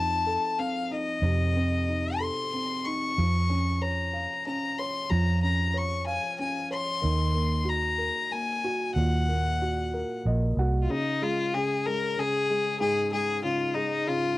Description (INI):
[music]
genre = acoustic folk-pop ballad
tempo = 93 BPM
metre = 3/4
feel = straight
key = Db major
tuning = A4 = 440 Hz
[part]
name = clear violin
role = melody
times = 0.0-14.4 s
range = Eb4 to Db6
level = -28 LUFS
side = left 3 dB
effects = none
[part]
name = felt-muted upright piano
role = accompaniment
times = 0.0-14.4 s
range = Ab2 to Gb5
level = -31 LUFS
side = equal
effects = cassette tape
[part]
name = vintage muted fingered electric bass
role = bass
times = 0.0-10.9 s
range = Bb1 to F2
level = -26 LUFS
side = right 1 dB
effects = tube saturation
[sound]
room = light reverb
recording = home recording on cassette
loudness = -25 LUFS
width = side -17 dB against mid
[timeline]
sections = 0.0-10.9 A section; 10.9-14.4 B section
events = none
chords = 0.0 F7; 3.2 Bbm/F; 7.0 Ebm; 10.9 Db5